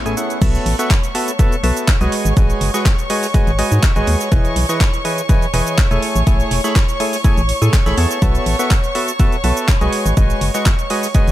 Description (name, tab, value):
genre	piano house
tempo	123 BPM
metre	4/4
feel	swing 53% on 16ths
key	unclear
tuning	A4 = 440 Hz
part	warm studio violin section	sustained chords	0.0-11.3 s	C#5 to C#6	-24 LUFS	equal	sidechain pumping
part	organ-like FM bass	bass	0.0-11.3 s	E1 to A2	-17 LUFS	equal	sidechain pumping
part	percussive organ stab	riff	0.1-11.3 s	A2 to C#6	-20 LUFS	equal	chorus, sidechain pumping, digital delay
part	house drum kit	drums	0.1-11.3 s	crash cymbal, handclaps, hi-hat, shaker	-24 LUFS	right 2 dB	none
part	electronic kick drum	drums	0.4-11.3 s	none	-14 LUFS	equal	none
part	jazz brush drum kit	drums	0.4-11.3 s	hi-hat, snare drum	-32 LUFS	right 2 dB	none
room	little or no reverb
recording	none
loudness	-13 LUFS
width	side -14 dB against mid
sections	0.4-11.3 A section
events	drop 0.4-11.3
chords	0.4 B7sus4; 2.1 G#m7; 4.3 Emaj7; 6.0 Amaj7; 8.2 B7sus4; 9.9 G#m7